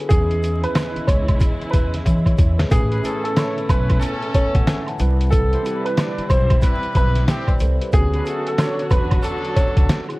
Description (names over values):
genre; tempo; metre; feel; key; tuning
hip hop, boom-bap hip-hop; 92 BPM; 4/4; swing 62% on 16ths; unclear; A4 = 441 Hz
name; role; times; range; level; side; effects
mellow tine electric piano; accompaniment; 0.0-10.2 s; A2 to A5; -28 LUFS; equal; medium stereo tremolo, high-pass filter, low-pass filter
warm studio string section; sustained chords; 0.0-10.2 s; C#3 to C#5; -31 LUFS; equal; high-pass filter, low-pass filter
clear upright piano; melody; 0.1-9.7 s; G#4 to C#5; -24 LUFS; right 1 dB; high-pass filter, low-pass filter, slapback echo
upright bass; bass; 0.1-9.9 s; A1 to E3; -21 LUFS; equal; none
trip hop sampler-style drum kit; drums; 0.1-10.2 s; hi-hat, kick drum, snare drum; -18 LUFS; equal; none
tube shaker and woodblock; percussion; 0.1-10.2 s; none; -34 LUFS; right 3 dB; none
bright trumpet section; stabs; 2.9-10.0 s; F#3 to D5; -28 LUFS; left 1 dB; high-pass filter, low-pass filter, slapback echo
room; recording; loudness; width
little or no reverb; worn, warbling old tape, cassette tape, vinyl crackle, warbly pitch drift; -16 LUFS; side -21 dB against mid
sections
0.0-10.2 A section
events
drum fill 2.1-2.7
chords
0.1 E6; 2.7 Aadd9; 5.0 Cmaj7; 7.9 Bmadd9/D